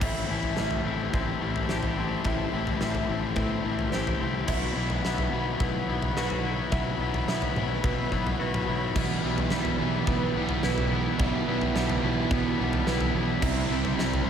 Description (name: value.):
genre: post-rock.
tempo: 107 BPM.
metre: 4/4.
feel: straight.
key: unclear.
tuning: A4 = 437 Hz.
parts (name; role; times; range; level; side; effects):
warm chamber string section; sustained chords; 0.0-14.3 s; E4 to C6; -38 LUFS; equal; none.
felt-muted upright piano; arpeggios; 0.0-14.3 s; B4 to E5; -38 LUFS; right 6 dB; lush chorus, analog delay.
twangy electric guitar; arpeggios; 0.0-14.3 s; A2 to G4; -36 LUFS; left 2 dB; lush chorus, analog delay.
overdriven semi-hollow guitar; riff; 0.0-14.3 s; A2 to E4; -30 LUFS; left 7 dB; none.
fuzz fingered electric bass; bass; 0.0-14.3 s; A1 to B2; -32 LUFS; equal; overdrive.
huge arena drum kit; drums; 0.0-14.3 s; crash cymbal, kick drum, snare drum, toms; -30 LUFS; equal; none.
sludgy distorted guitar; riff; 9.0-14.3 s; E2 to C4; -29 LUFS; right 8 dB; overdrive.
room: moderate lush hall reverb, RT60 1.6 s, studio ambience.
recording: dreamy mix soaked in reverb.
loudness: -24 LUFS.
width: side -8 dB against mid.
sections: 0.0-14.3 A section.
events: build-up 0.0-14.3.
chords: 0.0 Am7; 4.5 Bsus4; 9.0 Em/B; 13.4 C.